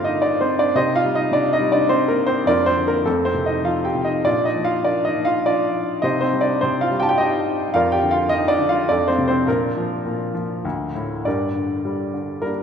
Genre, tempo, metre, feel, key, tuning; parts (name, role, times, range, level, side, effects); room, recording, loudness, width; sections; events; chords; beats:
classical, lyrical solo piano; 97-108 BPM; 3/4; rubato; Bb major; A4 = 439 Hz
clear grand piano; solo; 0.0-12.6 s; D2 to A5; -18 LUFS; equal
wet church reverb, RT60 3.3 s; recorded in a church or concert hall; -17 LUFS; side -7 dB against mid
0.0-11.3 A section; 11.3-12.6 B section
0.0 Gm; 0.8 Cm; 2.5 Bb/F; 3.1 Fadd9; 4.3 Bb; 6.0 Cm; 7.7 Bb/F; 8.9 F; 9.5 Bb; 10.6 D5; 11.3 Gm
0.20 | 0.76 1.32 1.89 | 2.46 3.05 3.65 | 4.27 4.87 5.46 | 6.04 6.62 7.19 | 7.75 8.31 8.89 | 9.47 10.05 10.65 | 11.26 11.86 12.45